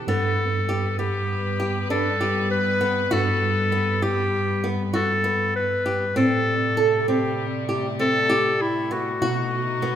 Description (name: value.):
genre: contemporary instrumental, chamber music in an uneven meter.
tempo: 98 BPM.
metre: 5/4.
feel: straight.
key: unclear.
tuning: A4 = 441 Hz.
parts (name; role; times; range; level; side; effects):
warm studio string section; sustained chords; 0.0-10.0 s; B2 to B4; -30 LUFS; left 3 dB; none.
mellow tine electric piano; bass; 0.0-10.0 s; G2 to B2; -28 LUFS; right 1 dB; medium stereo tremolo.
clear clarinet; melody; 0.1-10.0 s; E4 to B4; -23 LUFS; left 1 dB; none.
flamenco guitar; arpeggios; 0.1-10.0 s; B3 to A4; -26 LUFS; right 2 dB; none.
room: moderate scoring stage reverb, RT60 1.6 s.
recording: minimal, uncompressed stereo recording.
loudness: -20 LUFS.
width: side -10 dB against mid.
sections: 0.0-10.0 A section.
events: none.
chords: 0.1 G; 6.2 Am7; 9.2 B7.